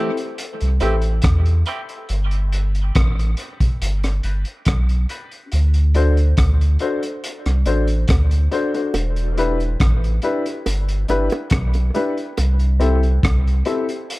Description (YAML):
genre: dub reggae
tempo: 70 BPM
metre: 4/4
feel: straight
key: E minor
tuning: A4 = 439 Hz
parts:
  - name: clean electric guitar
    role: accompaniment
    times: 0.0-1.8 s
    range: E3 to G4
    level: -29 LUFS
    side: right 5 dB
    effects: high-pass filter, dub echo
  - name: dark upright piano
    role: stabs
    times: 0.0-14.0 s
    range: C4 to C5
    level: -24 LUFS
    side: left 3 dB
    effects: high-pass filter, dub echo
  - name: crunchy breakbeat drum kit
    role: drums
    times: 0.2-14.2 s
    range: hi-hat, kick drum, rim click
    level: -21 LUFS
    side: equal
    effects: none
  - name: warm sub bass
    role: bass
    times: 0.6-13.6 s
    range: E1 to E2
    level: -17 LUFS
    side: equal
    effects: none
  - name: bongos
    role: percussion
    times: 8.9-12.6 s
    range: none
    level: -30 LUFS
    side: right 3 dB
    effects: dub echo
room: light reverb, small room ambience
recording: dark, warm production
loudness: -16 LUFS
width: side -20 dB against mid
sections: 0.0-14.2 A section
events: filter sweep 0.0-5.5; part muted 12.4-14.2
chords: 0.0 C6; 2.1 Gmaj7; 5.5 D7; 8.9 Em7; 12.4 C6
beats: 0.39 1.24 | 2.10 2.96 3.81 4.67 | 5.52 6.38 7.24 8.09 | 8.95 9.80 10.66 11.52 | 12.37 13.23 14.09